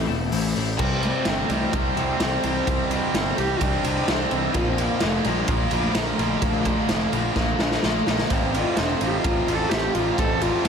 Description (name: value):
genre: quiet-loud alternative rock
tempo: 128 BPM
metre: 4/4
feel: straight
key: unclear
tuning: A4 = 440 Hz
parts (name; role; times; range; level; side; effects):
- dark cello; melody; 0.0-10.7 s; F3 to A4; -28 LUFS; equal; slapback echo, analog delay
- twelve-string electric guitar; arpeggios; 0.0-8.3 s; A2 to F4; -31 LUFS; left 8 dB; tremolo, slapback echo, analog delay
- fuzz picked electric bass; bass; 0.0-10.7 s; E1 to C2; -28 LUFS; equal; overdrive
- raw garage drum kit; drums; 0.3-10.7 s; crash cymbal, hi-hat, kick drum, ride cymbal, snare drum; -25 LUFS; right 1 dB; none
- tight distorted guitar; riff; 0.8-10.7 s; F2 to C4; -25 LUFS; right 1 dB; distortion
room: moderate recital hall reverb, RT60 1.6 s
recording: big arena sound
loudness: -20 LUFS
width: side -7 dB against mid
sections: 0.8-10.7 A section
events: cello solo 0.8-10.7; drum fill 7.4-8.3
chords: 0.0 Am; 0.8 C; 4.6 Bb; 8.3 F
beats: 0.32 | 0.79 1.26 1.73 2.20 | 2.67 3.14 3.61 4.08 | 4.55 5.02 5.49 5.96 | 6.43 6.90 7.37 7.83 | 8.30 8.77 9.24 9.71 | 10.18 10.65